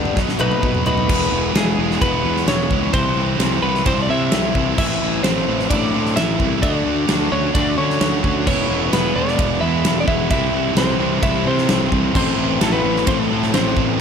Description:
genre	quiet-loud alternative rock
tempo	130 BPM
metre	4/4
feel	straight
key	unclear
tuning	A4 = 441 Hz
part	picked steel-string acoustic guitar	arpeggios	0.0-1.1 s	B2 to D#4	-26 LUFS	left 8 dB	none
part	sludgy distorted guitar	riff	0.0-14.0 s	G2 to F#4	-24 LUFS	right 17 dB	overdrive
part	thick fuzz guitar	riff	0.0-14.0 s	G2 to F#4	-24 LUFS	left 15 dB	distortion
part	fuzz fingered electric bass	bass	0.0-14.0 s	E1 to D3	-23 LUFS	equal	overdrive
part	big rock drum kit	drums	0.1-13.9 s	crash cymbal, kick drum, ride cymbal, snare drum, toms	-21 LUFS	equal	none
part	twelve-string electric guitar	melody	0.4-14.0 s	G#3 to E5	-22 LUFS	equal	slapback echo
part	sludgy distorted guitar	riff	8.5-14.0 s	A2 to E4	-25 LUFS	right 1 dB	overdrive
room	light reverb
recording	none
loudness	-16 LUFS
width	side -7 dB against mid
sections	0.0-1.1 A section; 1.1-14.0 B section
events	clean electric guitar solo 0.0-1.1; drum fill 0.2-1.1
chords	0.2 B7; 1.1 E; 2.9 C; 4.8 Am; 6.6 D; 8.5 E; 10.3 C; 12.2 Am

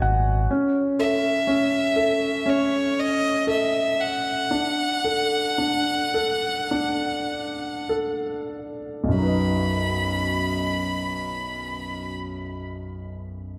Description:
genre	pop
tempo	46-62 BPM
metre	4/4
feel	straight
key	unclear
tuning	A4 = 441 Hz
part	clear grand piano	accompaniment	0.0-13.6 s	B1 to G#5	-27 LUFS	equal	none
part	fingered electric bass	bass	0.0-0.5 s	G#1	-24 LUFS	equal	none
part	clear violin	melody	1.0-12.1 s	C#5 to B5	-27 LUFS	equal	analog delay
room	wet lush hall reverb, RT60 2.6 s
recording	dreamy mix soaked in reverb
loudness	-24 LUFS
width	mono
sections	0.0-9.2 A section; 9.2-13.6 B section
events	grand piano fill 0.0-0.5; slowing down 0.5-9.2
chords	0.5 A/C#; 4.5 D; 9.2 B

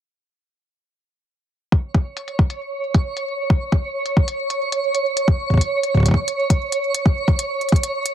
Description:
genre	IDM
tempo	135 BPM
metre	4/4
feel	straight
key	unclear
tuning	A4 = 440 Hz
part	electronic kick drum	drums	1.7-7.8 s	none	-15 LUFS	equal	none
part	twinkling granular texture	texture	2.2-8.1 s	C#5	-22 LUFS	right 2 dB	built-in reverb
part	electronic hi-hat	drums	2.2-8.1 s	none	-26 LUFS	left 2 dB	low-pass filter on hats, low-pass filter on room
room	light reverb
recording	heavily compressed radio sound, multiband compression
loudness	-18 LUFS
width	side -10 dB against mid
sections	1.7-8.1 A section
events	none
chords	none

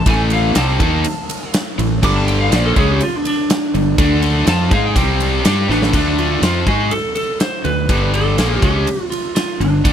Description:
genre	blues rock power trio and southern rock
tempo	123 BPM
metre	4/4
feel	straight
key	unclear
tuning	A4 = 442 Hz
part	lightly driven lead guitar	melody	0.0-9.9 s	D4 to D6	-21 LUFS	equal	none
part	distorted electric guitar	riff	0.0-9.9 s	G2 to G#4	-18 LUFS	equal	overdrive
part	fuzz fingered electric bass	bass	0.0-9.9 s	G1 to G#2	-18 LUFS	equal	overdrive
part	huge arena drum kit	drums	0.1-9.9 s	crash cymbal, kick drum, ride cymbal, snare drum	-19 LUFS	equal	none
room	little or no reverb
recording	none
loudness	-14 LUFS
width	side -9 dB against mid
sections	0.0-5.9 A section; 5.9-9.9 B section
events	lead electric guitar solo 0.0-5.9; drum fill 5.7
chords	0.0 A5; 2.0 G5; 4.0 D5; 5.0 C5; 5.5 A5; 5.9 D5; 7.9 G5

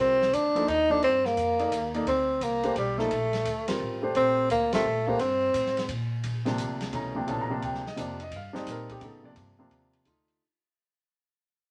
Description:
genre	modal jazz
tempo	173 BPM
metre	3/4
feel	swing 64% on 8ths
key	unclear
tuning	A4 = 441 Hz
part	warm tenor saxophone	melody	0.0-5.9 s	G3 to Eb4	-26 LUFS	equal	none
part	warm concert grand piano	accompaniment	0.0-10.4 s	B2 to Bb5	-34 LUFS	equal	none
part	upright bass	bass	0.0-10.4 s	A1 to Bb2	-39 LUFS	equal	none
part	open jazz drum kit	drums	0.2-10.3 s	hi-hat, kick drum, ride cymbal, snare drum	-42 LUFS	equal	none
room	moderate studio reverb, RT60 0.7 s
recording	none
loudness	-27 LUFS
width	mono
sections	0.0-6.2 A section; 6.2-10.4 B section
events	band accent 4.7; fade-out 6.2-10.4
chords	0.0 Cm9; 2.1 Gmadd9

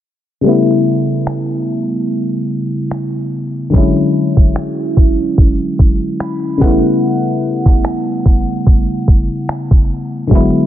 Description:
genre	contemporary R&B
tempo	73 BPM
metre	4/4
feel	swing 54% on 16ths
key	unclear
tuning	A4 = 440 Hz
part	FM electric piano	accompaniment	0.4-10.7 s	C#3 to B5	-14 LUFS	left 1 dB	chorus, phaser
part	detuned 8-bit digital drum machine	drums	1.3-10.5 s	finger snaps, kick drum	-10 LUFS	equal	soft clipping on snare
room	little or no reverb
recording	dense, heavily limited modern master, low-pass filter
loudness	-12 LUFS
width	side -12 dB against mid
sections	0.4-10.7 A section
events	filter sweep 0.4-10.7; FM electric piano fill 5.8-7.0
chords	0.4 A9; 3.7 E13; 6.6 A9

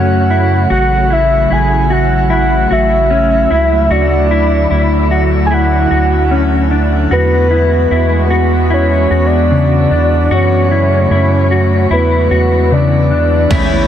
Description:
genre	dream pop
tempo	75 BPM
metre	4/4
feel	straight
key	unclear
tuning	A4 = 440 Hz
part	soft octave-layered synth lead	melody	0.0-13.9 s	B4 to G#5	-15 LUFS	equal	chorus, digital delay, shimmer reverb
part	warbly tape-like pad	sustained chords	0.0-13.9 s	C#3 to G#4	-17 LUFS	right 1 dB	chorus, built-in reverb, shimmer reverb
part	mellow electric guitar	arpeggios	0.0-13.9 s	C#3 to F#4	-16 LUFS	left 4 dB	ensemble chorus, digital delay, shimmer reverb
part	round analog bass	bass	0.0-13.9 s	A1 to F#2	-14 LUFS	equal	none
part	direct-recorded clean electric guitar	accompaniment	13.5-13.9 s	A3 to G#4	-20 LUFS	right 4 dB	harmonic tremolo, lush chorus, shimmer reverb
part	detuned 8-bit digital drum machine	drums	13.5-13.7 s	crash cymbal, kick drum, tambourine, toms	-14 LUFS	right 1 dB	none
part	soft synth bell	texture	13.7-13.9 s	E5	-27 LUFS	left 4 dB	none
room	moderate huge ambient reverb, RT60 6.0 s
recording	dense, heavily limited modern master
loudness	-9 LUFS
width	side -10 dB against mid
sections	0.0-13.5 A section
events	none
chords	0.0 F#m; 0.7 A6; 3.9 Dadd9; 7.1 Eadd9; 10.3 F#m; 11.9 E7

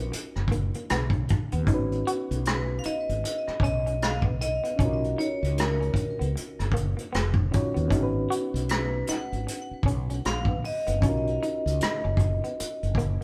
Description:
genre	R&B, neo-soul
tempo	77 BPM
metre	4/4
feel	swing 59% on 16ths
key	G# dorian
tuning	A4 = 444 Hz
part	vibraphone with hard mallets	melody	0.0-12.9 s	A#4 to F#5	-34 LUFS	equal	tape echo
part	semi-hollow electric guitar	second line	0.0-13.2 s	A#3 to F#4	-36 LUFS	equal	tremolo
part	barky reed electric piano	accompaniment	0.0-13.2 s	B3 to C#5	-36 LUFS	equal	fast tremolo
part	mellow fretless electric bass	bass	0.0-13.2 s	E#1 to D#2	-31 LUFS	equal	none
part	vintage brush drum kit	drums	0.1-13.2 s	hi-hat, kick drum, rim click	-30 LUFS	equal	none
room	light reverb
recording	band playing live in one room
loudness	-27 LUFS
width	mono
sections	0.0-13.2 A section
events	none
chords	0.0 Bmaj9; 1.7 G#m7; 4.8 Bmaj9 (rootless); 7.9 G#m7; 11.0 Bmaj9

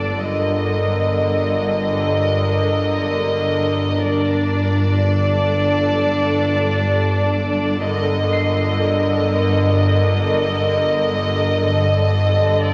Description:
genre	cinematic, suspense film score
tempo	free time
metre	none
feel	none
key	unclear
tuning	A4 = 439 Hz
part	warm chamber violin section	melody	0.0-12.7 s	D5 to Eb5	-24 LUFS	equal	none
part	warm chamber violin section	second line	0.0-12.7 s	A4 to Bb4	-28 LUFS	equal	none
part	warm studio viola section	accompaniment	0.0-12.7 s	D3 to D4	-25 LUFS	equal	none
part	dark chamber cello section	bass	0.0-12.7 s	G2	-25 LUFS	equal	none
part	dark chamber double bass section	bass	0.0-12.7 s	G1	-27 LUFS	equal	none
part	analog drone	drone	0.0-12.7 s	G1	-29 LUFS	equal	chorus
part	concert harp	texture	8.3-11.7 s	C7	-32 LUFS	equal	none
room	wet scoring stage reverb, RT60 1.6 s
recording	none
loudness	-18 LUFS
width	mono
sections	0.0-12.7 A section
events	none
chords	0.2 Ebmaj7/G

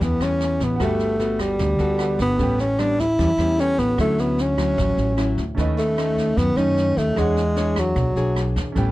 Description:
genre	bossa nova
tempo	151 BPM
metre	4/4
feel	straight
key	unclear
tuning	A4 = 440 Hz
part	breathy tenor saxophone	melody	0.0-8.6 s	F#3 to E4	-21 LUFS	equal	none
part	clear baby grand piano	accompaniment	0.0-8.9 s	C#4 to G5	-34 LUFS	right 6 dB	none
part	nylon-string guitar	accompaniment	0.0-8.9 s	A2 to C#5	-25 LUFS	left 2 dB	none
part	upright bass	bass	0.0-8.9 s	G1 to F#2	-24 LUFS	equal	none
part	jazz brush drum kit	drums	0.0-8.8 s	kick drum, rim click, snare drum	-30 LUFS	right 1 dB	none
room	little or no reverb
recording	none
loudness	-18 LUFS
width	side -17 dB against mid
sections	0.0-8.9 A section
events	none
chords	0.0 A9; 0.8 Gmaj9; 2.4 A9; 4.0 Dmaj9; 5.6 B9/D#; 7.2 E13

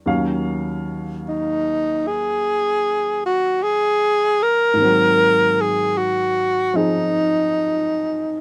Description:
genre	jazz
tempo	51 BPM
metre	4/4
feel	swing 67% on 8ths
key	unclear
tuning	A4 = 442 Hz
part	warm upright piano	accompaniment	0.0-8.4 s	Eb2 to F5	-26 LUFS	equal	none
part	breathy tenor saxophone	melody	1.3-8.4 s	Eb4 to Bb4	-19 LUFS	equal	none
room	little or no reverb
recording	close, detailed microphones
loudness	-19 LUFS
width	mono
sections	0.0-8.4 A section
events	none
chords	0.1 Ebm7; 4.8 Ab7

